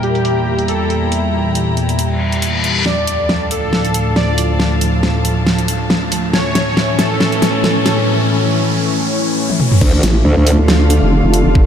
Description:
heavy wobble dubstep; 138 BPM; 4/4; swing 55% on 16ths, half-time; D harmonic minor; A4 = 440 Hz
soft supersaw; melody; 0.0-7.9 s; G4 to D5; -21 LUFS; equal; tape echo
lush unison pad; sustained chords; 0.0-11.7 s; D2 to F4; -17 LUFS; equal; chorus, sidechain pumping
dubstep drum kit; drums; 0.0-11.4 s; crash cymbal, hi-hat, snare drum, toms; -18 LUFS; equal; studio reverb
warm chamber string section; texture; 0.0-11.7 s; C#4 to Bb5; -25 LUFS; left 2 dB; sidechain pumping
reverse cymbal and riser; sound effects; 2.1-9.8 s; -24 LUFS; left 2 dB
growl bass; bass; 9.8-10.6 s; D2; -11 LUFS; equal; chorus, overdrive
electronic kick drum; drums; 9.8-11.6 s; -11 LUFS; equal; studio reverb
vowel-sweep wobble bass; bass; 10.0-11.7 s; F1 to D2; -12 LUFS; equal; chorus, overdrive
moderate huge ambient reverb, RT60 4.3 s; dreamy mix soaked in reverb, low-pass filter; -12 LUFS; side -8 dB against mid
0.0-2.9 A section; 2.9-9.8 B section; 9.8-11.7 C section
filter sweep 0.0-2.9; reverse cymbal 2.1-2.9; build-up 2.9-9.8; drum fill 2.9-8.1, 9.5-9.8; riser 2.9-9.8; drop 9.8-11.7
0.0 Edim; 2.9 Dm; 6.3 A; 9.8 Dm

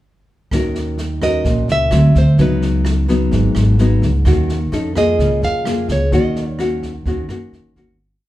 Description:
bossa nova; 128 BPM; 4/4; straight; Eb minor; A4 = 440 Hz
nylon-string guitar; accompaniment; 0.5-8.0 s; Ab2 to Bb4; -19 LUFS; left 2 dB
upright bass; bass; 0.5-8.0 s; Ab1 to Gb2; -16 LUFS; right 1 dB
open jazz drum kit; drums; 0.5-7.8 s; kick drum, rim click, snare drum; -24 LUFS; right 1 dB
nylon-string guitar; melody; 1.2-6.6 s; Cb5 to F5; -20 LUFS; right 2 dB
moderate large studio reverb, RT60 1.2 s; band playing live in one room; -14 LUFS; side -15 dB against mid
0.5-8.0 A section
fade-out 6.1-8.0
0.5 Ebm7; 1.9 D9; 2.4 Db9sus4; 4.3 Ebm7; 4.7 F7b13; 5.2 Bbm7/Db; 6.1 Ebm7

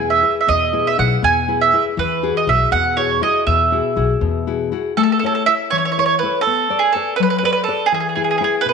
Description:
italian folk, Italian serenade; 80 BPM (dotted quarters); 6/8; rubato; E major, A major from 5.0 s; A4 = 440 Hz
mandolin; melody; 0.0-8.7 s; G#4 to G#5; -16 LUFS; right 6 dB
nylon-string guitar; accompaniment; 0.0-8.7 s; B2 to D5; -21 LUFS; left 11 dB
upright bass; bass; 0.0-4.7 s; B1 to E2; -22 LUFS; left 2 dB
wet echo chamber reverb, RT60 1.5 s, studio reverb; 1960s-style stereo with parts hard left and right; -15 LUFS; side -6 dB against mid
0.0-5.0 A section; 5.0-8.7 B section
0.0 E; 2.0 Eadd9; 5.0 A; 6.5 Bm7; 7.9 E

